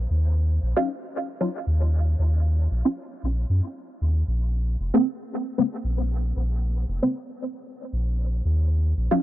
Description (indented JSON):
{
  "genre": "dub techno",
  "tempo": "115 BPM",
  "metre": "4/4",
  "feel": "swing 54% on 16ths",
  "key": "unclear",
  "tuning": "A4 = 440 Hz",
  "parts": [
    { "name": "soft dub sub bass", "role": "bass", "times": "0.0-9.1 s", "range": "F1 to Gb2", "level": "-22 LUFS", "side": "equal", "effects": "tube saturation" },
    { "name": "filtered dub chord stab", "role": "stabs", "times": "0.8-9.2 s", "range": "Db3 to F4", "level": "-26 LUFS", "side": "equal", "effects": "phaser, dub echo" }
  ],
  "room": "digital ambience",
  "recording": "dry, gritty hardware recording",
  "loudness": "-22 LUFS",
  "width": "side -14 dB against mid",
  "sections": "0.0-9.2 A section",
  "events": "none",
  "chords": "0.1 N.C.; 8.5 Ebm9"
}